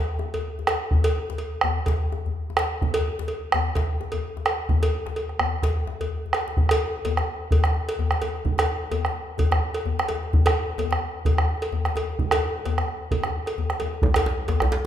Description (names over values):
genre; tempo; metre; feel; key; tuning
west african traditional, West African drum ensemble; 128 BPM; 4/4; swing 56% on 16ths; none; none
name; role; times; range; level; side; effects
djembe; percussion; 0.2-14.7 s; none; -28 LUFS; left 4 dB; none
cowbell; percussion; 0.3-14.6 s; none; -29 LUFS; right 1 dB; none
bombo; percussion; 0.7-14.7 s; none; -24 LUFS; right 1 dB; none
djembe; percussion; 14.0-14.8 s; none; -23 LUFS; right 1 dB; none
room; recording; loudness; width
wet recital hall reverb, RT60 1.8 s; minimal, uncompressed stereo recording; -22 LUFS; side -10 dB against mid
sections
0.0-6.6 A section; 6.6-14.9 B section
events
speeding up 0.0-14.9; drum fill 6.2-6.6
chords
none